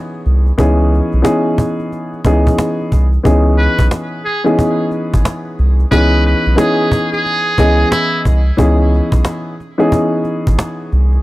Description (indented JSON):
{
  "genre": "hip hop, boom-bap hip-hop",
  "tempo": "90 BPM",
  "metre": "4/4",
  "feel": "swing 62% on 16ths",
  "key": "C# minor",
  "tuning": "A4 = 440 Hz",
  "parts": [
    { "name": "dark upright piano", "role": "accompaniment", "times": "0.0-11.2 s", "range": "E3 to D#5", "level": "-15 LUFS", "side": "equal", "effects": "high-pass filter, low-pass filter" },
    { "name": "soft dub sub bass", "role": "bass", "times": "0.3-11.2 s", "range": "G#1 to C#2", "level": "-12 LUFS", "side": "equal", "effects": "none" },
    { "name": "cajon", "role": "drums", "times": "0.3-11.2 s", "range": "none", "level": "-17 LUFS", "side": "equal", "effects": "none" },
    { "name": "trumpet with metal mute", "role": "melody", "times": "3.6-8.2 s", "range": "E4 to B4", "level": "-19 LUFS", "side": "right 1 dB", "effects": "high-pass filter, low-pass filter, tape echo" }
  ],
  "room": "small room ambience",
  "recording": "dry, gritty hardware recording",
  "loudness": "-11 LUFS",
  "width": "side -18 dB against mid",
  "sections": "0.0-11.2 A section",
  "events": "none",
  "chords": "0.0 C#m7"
}